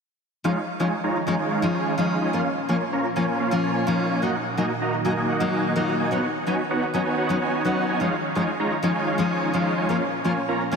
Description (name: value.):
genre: EDM.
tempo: 127 BPM.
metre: 4/4.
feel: straight.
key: unclear.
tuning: A4 = 440 Hz.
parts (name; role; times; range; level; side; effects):
picked steel-string acoustic guitar; accompaniment; 0.4-10.8 s; F3 to Gb4; -26 LUFS; left 3 dB; ping-pong delay.
lush unison pad; sustained chords; 1.0-10.8 s; Bb2 to Db4; -32 LUFS; right 1 dB; chorus, phaser.
supersaw chords; riff; 0.4-10.8 s; Ab3 to Bb5; -23 LUFS; right 2 dB; low-pass filter, ping-pong delay.
room: wet lush hall reverb, RT60 2.9 s.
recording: dense, heavily limited modern master.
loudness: -21 LUFS.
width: side -5 dB against mid.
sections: 0.4-10.8 A section.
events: none.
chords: 0.4 Dbadd9; 2.3 Bbm; 4.2 Ebm/Bb; 6.1 Badd9; 8.0 Dbadd9; 9.9 Bbm.